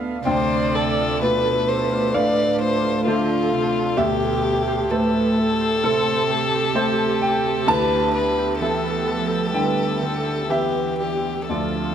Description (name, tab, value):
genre	neoclassical piano and strings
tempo	64 BPM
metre	4/4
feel	rubato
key	D dorian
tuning	A4 = 442 Hz
part	warm cello	second line	0.0-11.9 s	A2 to B3	-27 LUFS	right 4 dB	none
part	clear grand piano	accompaniment	0.0-11.9 s	D2 to A5	-24 LUFS	left 1 dB	none
part	lush unison pad	sustained chords	0.0-11.9 s	A3 to F5	-30 LUFS	equal	chorus
part	rich violin	melody	0.3-11.9 s	F4 to D5	-23 LUFS	left 4 dB	none
part	dark viola	accompaniment	0.3-11.9 s	F4 to D5	-27 LUFS	right 5 dB	none
part	concert harp	arpeggios	0.3-11.9 s	D4 to G5	-30 LUFS	right 2 dB	slapback echo
room	moderate recital hall reverb, RT60 1.4 s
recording	none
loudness	-18 LUFS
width	side -9 dB against mid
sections	0.3-11.9 A section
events	none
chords	0.3 Dm7; 4.0 Am7/D; 7.7 Em7/D